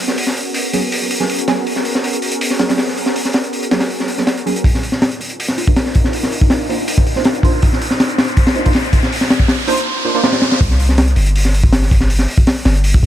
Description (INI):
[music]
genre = drum and bass, jungle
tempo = 161 BPM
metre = 4/4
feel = straight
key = unclear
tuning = A4 = 440 Hz
[part]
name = soft string machine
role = sustained chords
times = 0.0-9.8 s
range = Cb4 to C5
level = -23 LUFS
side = equal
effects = ensemble chorus, vintage 12-bit sampler grit
[part]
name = crunchy breakbeat drum kit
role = drums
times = 0.1-13.1 s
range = hi-hat, kick drum, snare drum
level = -14 LUFS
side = equal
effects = high-pass filter on kick, high-pass filter on hats, high-pass filter on snare, high-pass filter on room
[part]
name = deep mellow chord stab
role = stabs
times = 0.7-10.3 s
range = Gb3 to C5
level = -22 LUFS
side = right 3 dB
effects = chorus, phaser, dub echo
[part]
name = long sustained 808-style bass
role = bass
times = 4.6-13.1 s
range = G1 to D2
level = -15 LUFS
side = equal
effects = high-pass filter
[part]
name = riser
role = sound effects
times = 6.1-10.6 s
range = none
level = -23 LUFS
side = equal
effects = none
[sound]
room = light reverb, small room ambience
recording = none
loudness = -13 LUFS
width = side -12 dB against mid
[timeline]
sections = 0.0-4.6 A section; 4.6-10.6 B section; 10.6-13.1 C section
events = build-up 4.6-10.6; filter sweep on string machine 4.6-10.6; filter sweep on synth stab 4.6-10.6; riser 6.1-10.6; drum fill 10.2-10.6; drop 10.6-13.1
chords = 0.0 Abm11; 4.6 Cm11; 10.6 C5